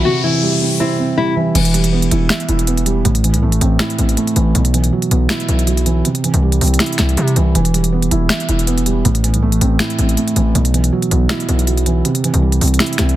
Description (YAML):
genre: hip hop, trap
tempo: 160 BPM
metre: 4/4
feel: half-time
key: E minor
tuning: A4 = 440 Hz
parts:
  - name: nylon-string guitar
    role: melody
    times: 0.0-1.3 s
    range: C4 to F#4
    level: -20 LUFS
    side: left 4 dB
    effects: low-pass filter, tape echo
  - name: felt-muted upright piano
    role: accompaniment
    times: 0.0-13.2 s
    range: A2 to E5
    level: -16 LUFS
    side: right 3 dB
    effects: low-pass filter
  - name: distorted 808-style bass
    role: bass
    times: 0.0-13.2 s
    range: E1 to C3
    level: -16 LUFS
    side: left 1 dB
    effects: distortion
  - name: riser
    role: sound effects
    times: 0.0-0.8 s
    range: none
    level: -20 LUFS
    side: left 3 dB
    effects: none
  - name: trap drum kit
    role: drums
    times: 1.6-13.2 s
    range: crash cymbal, finger snaps, hi-hat, snare drum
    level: -20 LUFS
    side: equal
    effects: overdrive
room: little or no reverb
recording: dense, heavily limited modern master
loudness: -13 LUFS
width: side -14 dB against mid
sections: 0.0-1.6 A section; 1.6-13.2 B section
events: riser 0.0-1.6; break 0.1-1.6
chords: 0.1 C; 1.6 Em; 3.1 Am; 4.6 Bsus4; 6.1 C; 7.6 Em; 9.1 Am; 10.6 Bsus4; 12.1 C